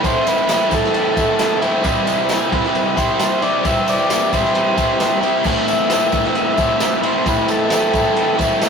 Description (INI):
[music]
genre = garage rock duo or trio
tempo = 133 BPM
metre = 4/4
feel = straight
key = unclear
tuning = A4 = 438 Hz
[part]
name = combo organ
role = melody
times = 0.0-8.4 s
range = A4 to E5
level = -21 LUFS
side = equal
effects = none
[part]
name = biting overdriven guitar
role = riff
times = 0.0-8.7 s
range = A2 to E4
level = -16 LUFS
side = equal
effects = none
[part]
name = crunchy breakbeat drum kit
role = drums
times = 0.0-8.7 s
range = crash cymbal, kick drum, ride cymbal, snare drum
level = -22 LUFS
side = left 1 dB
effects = none
[part]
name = tambourine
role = percussion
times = 0.0-8.7 s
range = none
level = -33 LUFS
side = right 4 dB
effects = none
[sound]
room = moderate stone room reverb, RT60 1.0 s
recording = rough rehearsal-room recording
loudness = -14 LUFS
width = side -6 dB against mid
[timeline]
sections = 0.0-8.7 A section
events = none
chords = 0.0 Am; 1.8 C; 5.5 Am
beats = | 0.04 0.49 0.94 1.40 | 1.85 2.30 2.75 3.20 | 3.65 4.10 4.55 5.00 | 5.45 5.90 6.35 6.80 | 7.26 7.71 8.16 8.62